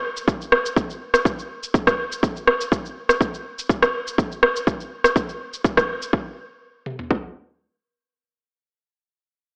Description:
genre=afro house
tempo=123 BPM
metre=4/4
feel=swing 53% on 16ths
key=none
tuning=none
part: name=electronic cabasa and rim click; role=drums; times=0.2-6.1 s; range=none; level=-22 LUFS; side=equal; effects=small room ambience
part: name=house drum kit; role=drums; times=0.3-7.2 s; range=kick drum, toms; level=-25 LUFS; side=equal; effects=overdrive, small room ambience
room=moderate lush hall reverb, RT60 1.9 s, digital ambience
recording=dry, gritty hardware recording, transformer saturation, AM radio sound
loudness=-22 LUFS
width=mono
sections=0.0-6.1 A section; 6.1-9.6 B section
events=none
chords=none

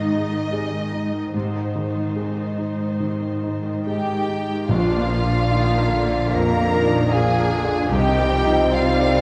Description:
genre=cinematic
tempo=74 BPM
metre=4/4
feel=rubato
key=Bb mixolydian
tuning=A4 = 440 Hz
part: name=warm symphonic violin section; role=melody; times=0.0-9.2 s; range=C5 to Bb5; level=-30 LUFS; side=equal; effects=none
part: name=clear concert grand piano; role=accompaniment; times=0.0-9.2 s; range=Bb1 to C5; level=-27 LUFS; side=equal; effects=none
part: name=warm symphonic viola section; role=accompaniment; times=0.0-9.2 s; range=C3 to Eb4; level=-30 LUFS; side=equal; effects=none
part: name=rich symphonic cello section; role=bass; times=0.0-9.2 s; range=Ab2 to C3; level=-29 LUFS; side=equal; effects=none
part: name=hollow large flute ensemble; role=second line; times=3.9-9.2 s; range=D5 to F5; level=-29 LUFS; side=equal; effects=none
part: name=warm clarinet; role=second line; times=3.9-9.2 s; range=F4 to Bb4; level=-31 LUFS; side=equal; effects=none
part: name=warm symphonic violin section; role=second line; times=3.9-9.2 s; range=F4 to Bb4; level=-30 LUFS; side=equal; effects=none
part: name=dark French horn section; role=sustained chords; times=4.7-9.2 s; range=Eb3 to D4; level=-30 LUFS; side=equal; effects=none
part: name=rich symphonic double bass section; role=bass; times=4.7-9.2 s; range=Bb1 to C2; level=-29 LUFS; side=equal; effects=none
part: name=timpani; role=percussion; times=4.7-5.9 s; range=Bb2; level=-29 LUFS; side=equal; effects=none
room=moderate concert hall reverb, RT60 2.0 s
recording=dark, warm production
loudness=-21 LUFS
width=mono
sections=0.0-4.7 A section; 4.7-9.2 B section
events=none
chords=0.0 Ab; 4.7 Bb; 7.9 Cm

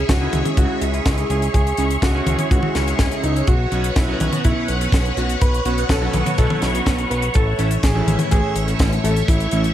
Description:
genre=italo disco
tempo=124 BPM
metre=4/4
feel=straight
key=unclear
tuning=A4 = 436 Hz
part: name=phased string machine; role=sustained chords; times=0.0-9.7 s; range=A3 to C#6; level=-25 LUFS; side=equal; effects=ensemble chorus, phaser
part: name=fat analog bass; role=bass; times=0.0-9.7 s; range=A1 to C#2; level=-22 LUFS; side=equal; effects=none
part: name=warm grand piano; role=melody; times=0.1-9.6 s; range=D#4 to B4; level=-26 LUFS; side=equal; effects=vintage 12-bit sampler grit, digital delay
part: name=kick drum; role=drums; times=0.1-9.4 s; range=none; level=-18 LUFS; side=equal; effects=none
part: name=tight funk drum kit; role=drums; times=0.1-9.7 s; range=hi-hat, snare drum, toms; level=-24 LUFS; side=left 1 dB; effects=gated reverb
part: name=chorused polysynth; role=stabs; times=0.2-9.7 s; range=A2 to C#5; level=-25 LUFS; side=right 2 dB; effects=none
room=light reverb, small room ambience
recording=vinyl crackle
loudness=-16 LUFS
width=side -11 dB against mid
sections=0.0-9.7 A section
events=none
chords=0.0 C#m; 3.5 Bsus2; 7.3 A

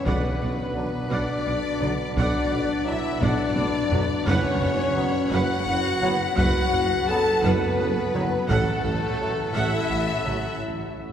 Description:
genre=cinematic, epic orchestral film score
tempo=57 BPM (dotted quarters)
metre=6/8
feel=straight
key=B minor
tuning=A4 = 440 Hz
part: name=rich studio violin section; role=melody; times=0.0-10.6 s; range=A4 to A5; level=-31 LUFS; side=left 4 dB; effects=none
part: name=rich symphonic violin section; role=second line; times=0.0-10.6 s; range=A4 to A5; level=-32 LUFS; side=left 3 dB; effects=none
part: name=mellow French horn section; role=sustained chords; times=0.0-10.6 s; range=A3 to A4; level=-27 LUFS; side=left 2 dB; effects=none
part: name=pipe organ, sparkling flutes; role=sustained chords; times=0.0-10.6 s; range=C#4 to F#5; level=-34 LUFS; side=equal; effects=none
part: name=warm symphonic viola section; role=accompaniment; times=0.1-10.3 s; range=F#4 to F#5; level=-32 LUFS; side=right 1 dB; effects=none
part: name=rich symphonic cello section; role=bass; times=0.1-10.3 s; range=F#2 to B2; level=-31 LUFS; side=right 2 dB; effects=none
part: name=rich symphonic double bass section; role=bass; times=0.1-10.3 s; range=F#1 to B1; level=-31 LUFS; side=right 2 dB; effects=none
part: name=warm tuba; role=bass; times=0.1-10.4 s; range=F#1 to B1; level=-33 LUFS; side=right 2 dB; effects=none
part: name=taiko ensemble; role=drums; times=0.1-10.6 s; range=none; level=-31 LUFS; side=equal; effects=none
part: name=timpani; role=percussion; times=0.1-1.1, 4.3-5.3 s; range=F#2 to B2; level=-33 LUFS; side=equal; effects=none
part: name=mellow trombone section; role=sustained chords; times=0.7-10.4 s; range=F#3 to D4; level=-36 LUFS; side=right 3 dB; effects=none
room=wet cathedral reverb, RT60 4.3 s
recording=recorded in a church or concert hall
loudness=-21 LUFS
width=side -9 dB against mid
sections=0.0-11.1 A section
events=drum fill 3.2-4.3; break 10.6-11.1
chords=0.1 Bm; 4.3 F#sus4; 8.5 A6

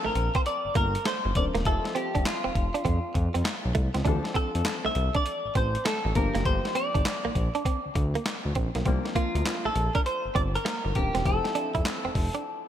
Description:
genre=R&B, new jack swing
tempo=100 BPM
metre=4/4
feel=swing 65% on 16ths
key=unclear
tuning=A4 = 436 Hz
part: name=direct-recorded clean electric guitar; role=melody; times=0.0-12.7 s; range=F4 to E5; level=-30 LUFS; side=equal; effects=lush chorus
part: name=warm grand piano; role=accompaniment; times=0.0-12.7 s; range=E3 to E5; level=-36 LUFS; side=left 4 dB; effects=analog chorus
part: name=direct-recorded clean electric guitar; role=riff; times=0.0-12.4 s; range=A3 to E4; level=-33 LUFS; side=right 5 dB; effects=analog chorus
part: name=smooth synth bass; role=bass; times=0.1-12.3 s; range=Eb1 to F2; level=-28 LUFS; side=equal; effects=none
part: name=boom bap sampler-style drum kit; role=drums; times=0.2-12.4 s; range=handclaps, hi-hat, kick drum, snare drum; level=-29 LUFS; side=equal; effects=gated reverb
room=light reverb, digital ambience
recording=bright 1980s-style digital production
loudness=-24 LUFS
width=side -10 dB against mid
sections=0.0-12.7 A section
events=break 12.5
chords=0.0 C9sus4; 1.7 Fmaj7; 4.1 Dm7; 6.2 Gm7; 8.9 C9sus4; 11.3 Fmaj7

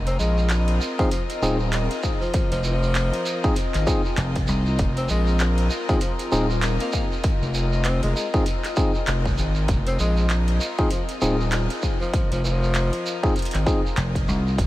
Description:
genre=glitch hop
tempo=98 BPM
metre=4/4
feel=swing 59% on 16ths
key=F minor pentatonic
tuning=A4 = 440 Hz
part: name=gritty driven synth bass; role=bass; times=0.0-14.7 s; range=Eb1 to Bb1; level=-22 LUFS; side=equal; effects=distortion, overdrive
part: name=dark studio string section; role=texture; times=0.0-14.7 s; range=C4 to Eb5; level=-30 LUFS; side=left 3 dB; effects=sidechain pumping
part: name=clear tenor saxophone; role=melody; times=0.1-13.3 s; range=F3 to C4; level=-31 LUFS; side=left 1 dB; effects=ping-pong delay
part: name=dubstep drum kit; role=drums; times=0.1-14.7 s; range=handclaps, hi-hat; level=-32 LUFS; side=right 1 dB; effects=small room ambience
part: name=shekere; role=percussion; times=0.1-14.7 s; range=none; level=-34 LUFS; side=right 4 dB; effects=none
part: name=tine electric piano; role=stabs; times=1.0-13.8 s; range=C4 to Ab4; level=-28 LUFS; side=left 1 dB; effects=sidechain pumping, ping-pong delay
part: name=electronic kick drum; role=drums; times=1.0-14.7 s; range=none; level=-24 LUFS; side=equal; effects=small room ambience
part: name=dry thumbed slap bass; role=bass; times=4.2-4.8, 14.0-14.6 s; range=F1 to C2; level=-22 LUFS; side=equal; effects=none
room=light reverb, studio ambience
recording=vinyl crackle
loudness=-20 LUFS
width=side -16 dB against mid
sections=0.0-14.7 A section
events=none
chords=0.0 Fm7

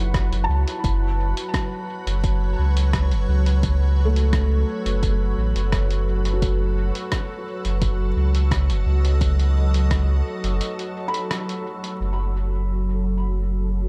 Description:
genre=ambient dub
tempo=86 BPM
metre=4/4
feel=straight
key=unclear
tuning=A4 = 440 Hz
part: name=soft additive organ-like pad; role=sustained chords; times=0.0-13.9 s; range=F#3 to F#5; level=-32 LUFS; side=equal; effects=ensemble chorus, built-in reverb
part: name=felt-muted upright piano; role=arpeggios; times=0.0-12.0 s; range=A3 to B5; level=-34 LUFS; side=equal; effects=low-pass filter, tape echo
part: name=warm sub bass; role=bass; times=0.0-13.9 s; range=F#1 to C#2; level=-22 LUFS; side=equal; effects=none
part: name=electronic kick drum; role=drums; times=0.1-10.1 s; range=none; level=-27 LUFS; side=equal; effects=overdrive
part: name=lo-fi sampler-style drum kit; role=drums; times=0.1-12.0 s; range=hi-hat, rim click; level=-33 LUFS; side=equal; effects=dub echo
room=digital ambience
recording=none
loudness=-22 LUFS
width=mono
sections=0.0-12.0 A section; 12.0-13.9 B section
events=break 10.6-12.0; filter sweep on ambient pad 12.0-13.9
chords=0.0 F#m7; 0.8 Aadd9/F#; 12.0 F#m9

